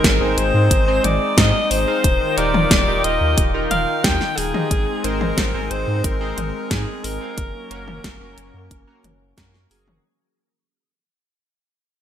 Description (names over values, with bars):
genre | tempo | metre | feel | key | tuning
synthwave | 90 BPM | 4/4 | straight | unclear | A4 = 440 Hz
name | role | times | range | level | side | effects
bright alto saxophone | melody | 0.0-9.4 s | Ab4 to G5 | -22 LUFS | equal | ping-pong delay
warm analog pad | sustained chords | 0.0-10.0 s | Eb3 to G5 | -26 LUFS | left 4 dB | chorus, sidechain pumping
chorused polysynth | stabs | 0.0-10.0 s | Bb3 to F5 | -27 LUFS | right 2 dB | vintage 12-bit sampler grit, ping-pong delay
round analog bass | bass | 0.0-10.0 s | Eb1 to Ab2 | -23 LUFS | equal | none
electronic kick drum | drums | 0.0-9.5 s | none | -21 LUFS | equal | none
pop drum kit | drums | 0.0-10.0 s | hi-hat, snare drum, toms | -21 LUFS | equal | gated reverb
room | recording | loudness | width
moderate plate reverb, RT60 2.0 s | bright 1980s-style digital production | -16 LUFS | side -10 dB against mid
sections
0.0-10.0 A section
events
fade-out 2.9-10.0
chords
0.0 Ab; 2.0 Ebadd9; 4.7 Ab; 7.4 Gb